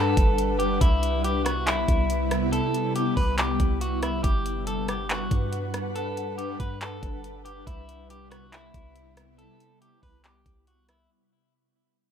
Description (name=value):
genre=hip hop, atmospheric cloud-rap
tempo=140 BPM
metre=4/4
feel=half-time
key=unclear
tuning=A4 = 440 Hz
part: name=electric guitar at the edge of break-up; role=melody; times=0.0-11.1 s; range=E4 to B4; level=-30 LUFS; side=left 1 dB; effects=spring reverb, low-pass filter, ping-pong delay
part: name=ethereal airy pad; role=sustained chords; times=0.0-11.1 s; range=C3 to F#5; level=-29 LUFS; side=left 1 dB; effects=ensemble chorus, built-in reverb, tremolo, sidechain pumping
part: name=soft 808-style bass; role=bass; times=0.0-11.1 s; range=G1 to G2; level=-30 LUFS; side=equal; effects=none
part: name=smooth R&B drum kit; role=drums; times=0.2-11.0 s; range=handclaps, hi-hat, kick drum, rim click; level=-25 LUFS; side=equal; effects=none
room=digital ambience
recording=rough home demo mix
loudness=-23 LUFS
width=side -8 dB against mid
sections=0.0-11.1 A section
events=fade-out 0.0-11.1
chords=0.0 Gmaj7; 0.8 Cmaj7; 4.2 Gmaj7; 7.7 Cmaj7